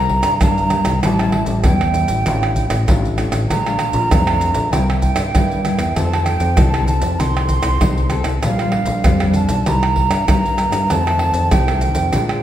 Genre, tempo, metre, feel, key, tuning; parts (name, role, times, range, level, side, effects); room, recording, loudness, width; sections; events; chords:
samba and choro; 97 BPM; 4/4; straight; A4 = 436 Hz
breathy hollow jazz flute; second line; 0.0-12.4 s; F5 to C6; -20 LUFS; right 3 dB
nylon-string guitar; accompaniment; 0.0-12.4 s; F2 to A4; -22 LUFS; left 2 dB
fingered electric bass; bass; 0.0-12.4 s; A1 to G2; -19 LUFS; left 1 dB
surdo, pandeiro, maracas and tamborim; percussion; 0.1-12.4 s; -19 LUFS; equal
wet recital hall reverb, RT60 1.4 s; recorded in a church or concert hall; -14 LUFS; side -11 dB against mid
0.0-12.4 A section
flute solo 0.0-12.4
0.0 Cm7; 1.0 A7; 2.3 Dm/A; 3.5 Bbmaj7; 4.7 C7; 6.0 F7; 8.4 Bb6; 9.7 Cm7; 10.9 F7